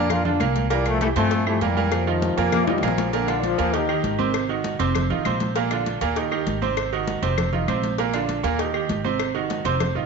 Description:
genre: latin, salsa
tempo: 198 BPM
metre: 4/4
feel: straight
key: Bb major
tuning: A4 = 440 Hz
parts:
  - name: clear trombone section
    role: melody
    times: 0.0-2.8 s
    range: C3 to F4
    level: -25 LUFS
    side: left 4 dB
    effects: none
  - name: bright concert grand piano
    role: accompaniment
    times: 0.0-10.1 s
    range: Bb2 to C5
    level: -23 LUFS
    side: right 8 dB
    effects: none
  - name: upright bass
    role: bass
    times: 0.0-10.1 s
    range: F1 to G2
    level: -27 LUFS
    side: left 2 dB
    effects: none
  - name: claves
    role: percussion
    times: 0.1-10.0 s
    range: none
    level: -35 LUFS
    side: left 13 dB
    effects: none
  - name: congas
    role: percussion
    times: 0.1-10.1 s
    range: none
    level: -31 LUFS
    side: left 1 dB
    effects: none
  - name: cowbell and bongos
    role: percussion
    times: 0.1-10.0 s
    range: none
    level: -32 LUFS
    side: left 11 dB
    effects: none
  - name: brilliant trombone section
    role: second line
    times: 2.2-4.3 s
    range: Db3 to Bb3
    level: -26 LUFS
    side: left 8 dB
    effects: none
room: wet echo chamber reverb, RT60 1.4 s, small room ambience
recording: 1960s-style stereo with parts hard left and right, nothing above 7.7 kHz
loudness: -20 LUFS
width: side -5 dB against mid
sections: 0.0-3.1 A section; 3.1-10.1 B section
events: drum fill 2.7-3.1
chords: 0.0 Bb; 0.7 C7; 1.9 F7sus4; 3.1 Bb; 3.7 Eb; 4.3 Ab7; 4.9 F7; 5.6 Bb; 6.2 Eb; 6.8 Ab7; 7.4 F5; 8.0 Bb; 8.6 Eb; 9.2 Ab7

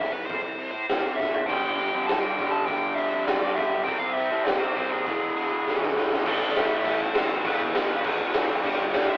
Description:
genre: punk rock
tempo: 201 BPM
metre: 4/4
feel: straight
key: A minor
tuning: A4 = 437 Hz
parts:
  - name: dark smooth lead guitar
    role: melody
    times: 0.0-9.2 s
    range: G#4 to A5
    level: -28 LUFS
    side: equal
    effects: overdrive
  - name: fuzz picked electric bass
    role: bass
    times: 0.0-9.2 s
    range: E1 to C3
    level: -34 LUFS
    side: equal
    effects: overdrive
  - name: raw garage drum kit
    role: drums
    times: 0.0-9.2 s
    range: crash cymbal, hi-hat, kick drum, snare drum, toms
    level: -26 LUFS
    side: equal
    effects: none
  - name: crunchy overdriven guitar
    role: riff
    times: 1.5-9.2 s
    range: E2 to C4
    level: -31 LUFS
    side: left 1 dB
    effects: none
  - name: crunchy overdriven guitar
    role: riff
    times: 1.5-9.2 s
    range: E2 to C4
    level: -36 LUFS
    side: equal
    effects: none
  - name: overdriven electric guitar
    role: riff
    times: 1.5-9.2 s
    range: E2 to C4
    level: -30 LUFS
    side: right 1 dB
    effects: none
room: light reverb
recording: rough rehearsal-room recording, telephone sound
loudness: -22 LUFS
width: side -24 dB against mid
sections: 0.0-6.3 A section; 6.3-9.2 B section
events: half time 0.0-6.3; drum fill 1.2, 5.7-6.3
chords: 0.0 C; 1.5 G; 3.9 C; 5.1 E; 6.3 Am; 7.4 E5; 8.6 G5

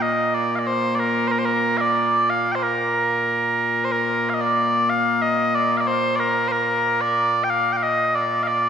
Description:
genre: scottish traditional, Scottish pipe music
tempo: 92 BPM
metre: 2/4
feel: straight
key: Bb major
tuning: A4 = 442 Hz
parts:
  - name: mellow small bagpipes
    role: solo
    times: 0.0-8.7 s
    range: Bb2 to G5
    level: -18 LUFS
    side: equal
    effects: none
room: wet concert hall reverb, RT60 2.1 s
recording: recorded in a church or concert hall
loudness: -18 LUFS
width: side -8 dB against mid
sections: 0.0-3.9 A section; 3.9-8.7 A section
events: none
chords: none

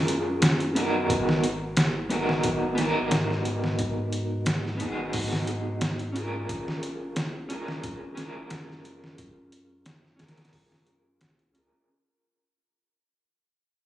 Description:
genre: trip hop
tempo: 89 BPM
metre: 4/4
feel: swing 54% on 16ths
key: G# dorian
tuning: A4 = 440 Hz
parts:
  - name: electric guitar at the edge of break-up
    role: accompaniment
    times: 0.0-11.9 s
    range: B3 to A#4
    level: -28 LUFS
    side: equal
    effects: tremolo, low-pass filter, tape echo
  - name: soft dub sub bass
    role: bass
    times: 0.0-11.7 s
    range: F#1 to G#2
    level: -34 LUFS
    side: equal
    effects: none
  - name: trip hop sampler-style drum kit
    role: drums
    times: 0.1-11.7 s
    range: hi-hat, kick drum, snare drum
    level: -27 LUFS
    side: equal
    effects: overdrive
room: light reverb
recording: recorded on a phone in the room, studio reverb, compression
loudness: -24 LUFS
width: side -13 dB against mid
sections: 0.0-1.1 A section; 1.1-11.9 B section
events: fade-out 1.1-11.9; filter sweep on clean electric guitar 1.1-11.9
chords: 0.0 F#maj7; 1.1 G#m7; 6.5 F#maj7

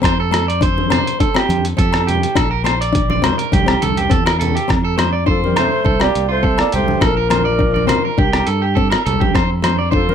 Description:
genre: highlife guitar band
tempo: 103 BPM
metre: 4/4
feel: straight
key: F major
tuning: A4 = 440 Hz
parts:
  - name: nylon-string guitar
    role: accompaniment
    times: 0.0-10.1 s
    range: A3 to D4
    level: -22 LUFS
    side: left 6 dB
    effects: none
  - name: electric guitar at the edge of break-up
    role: arpeggios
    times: 0.0-10.1 s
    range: F4 to D5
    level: -20 LUFS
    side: right 3 dB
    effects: tape echo
  - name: fingered electric bass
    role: bass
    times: 0.0-10.1 s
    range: Bb1 to G2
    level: -20 LUFS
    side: equal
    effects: none
  - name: dusty soul sampler-style drum kit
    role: drums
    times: 0.0-10.1 s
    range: hi-hat, kick drum, rim click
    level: -19 LUFS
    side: equal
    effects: overdrive
  - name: agogo bells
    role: percussion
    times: 0.0-9.8 s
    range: none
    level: -24 LUFS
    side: left 9 dB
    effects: none
  - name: congas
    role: percussion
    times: 0.8-10.1 s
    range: none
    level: -24 LUFS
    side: equal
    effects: none
  - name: breathy clarinet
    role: melody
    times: 5.3-10.1 s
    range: A4 to D5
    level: -20 LUFS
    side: right 1 dB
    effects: none
  - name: warm tenor saxophone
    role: second line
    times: 5.3-10.1 s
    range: F3 to Bb3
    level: -26 LUFS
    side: left 3 dB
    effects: none
room: light reverb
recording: none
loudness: -13 LUFS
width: side -8 dB against mid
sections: 0.0-4.7 A section; 4.7-10.1 B section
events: none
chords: 0.0 F; 2.4 Bb; 3.5 C; 4.7 F; 7.0 Bb; 8.2 C5; 9.4 F

